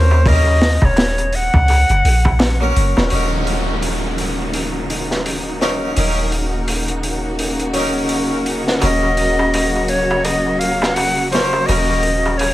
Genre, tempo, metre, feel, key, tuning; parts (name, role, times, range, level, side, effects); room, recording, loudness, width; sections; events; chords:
trip hop; 84 BPM; 4/4; swing 59% on 16ths; Eb minor; A4 = 440 Hz
breathy bright jazz flute; melody; 0.0-2.8, 8.8-12.5 s; C5 to Gb5; -19 LUFS; equal; dub echo
harpsichord; accompaniment; 0.0-12.0 s; Gb3 to Bb4; -24 LUFS; equal; harmonic tremolo, tape echo
soft 808-style bass; bass; 0.0-12.5 s; Eb1 to Eb2; -19 LUFS; equal
darbuka; percussion; 0.1-3.1, 8.8-12.5 s; -26 LUFS; right 1 dB
crunchy breakbeat drum kit; drums; 0.3-12.5 s; hi-hat, kick drum, snare drum; -20 LUFS; equal; high-pass filter on kick, high-pass filter on hats, high-pass filter on snare, high-pass filter on room
warm symphonic string section; sustained chords; 3.1-12.5 s; Db3 to Gb4; -21 LUFS; equal
downlifter; sound effects; 3.1-8.8 s; -27 LUFS; equal
light reverb, small room ambience; vinyl crackle; -14 LUFS; side -15 dB against mid
0.0-3.1 A section; 3.1-12.5 B section
0.0 Ebm7